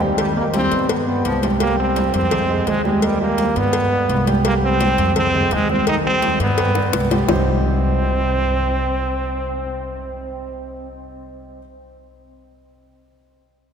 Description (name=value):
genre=latin, salsa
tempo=169 BPM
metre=4/4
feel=straight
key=C minor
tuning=A4 = 440 Hz
part: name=clear trombone section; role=melody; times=0.0-1.4 s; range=Eb3 to C4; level=-24 LUFS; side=left 2 dB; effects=none
part: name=dark grand piano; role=accompaniment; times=0.0-11.6 s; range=C3 to G5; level=-24 LUFS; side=right 2 dB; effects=none
part: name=upright bass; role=bass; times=0.0-11.6 s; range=C2 to G2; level=-23 LUFS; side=left 1 dB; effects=none
part: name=congas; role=percussion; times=0.0-7.4 s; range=none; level=-24 LUFS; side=equal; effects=none
part: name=bright trombone section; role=second line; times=0.2-1.4 s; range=Eb3 to G3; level=-31 LUFS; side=left 2 dB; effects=none
part: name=cowbell and bongos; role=percussion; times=0.2-7.4 s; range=none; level=-26 LUFS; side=left 4 dB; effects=none
part: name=brilliant trombone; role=melody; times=1.6-10.9 s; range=G3 to Eb4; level=-21 LUFS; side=right 2 dB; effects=none
room=wet cathedral reverb, RT60 5.0 s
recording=recorded in a church or concert hall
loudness=-16 LUFS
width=side -7 dB against mid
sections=0.0-1.6 A section; 1.6-7.3 B section; 7.3-10.1 C section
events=drum fill 6.8-7.3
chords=0.2 Eb; 0.9 G7; 1.6 C5; 2.3 Fm; 3.0 Eb; 3.7 G; 4.4 C5; 5.2 Fm; 5.9 Eb; 6.6 G; 7.3 Cm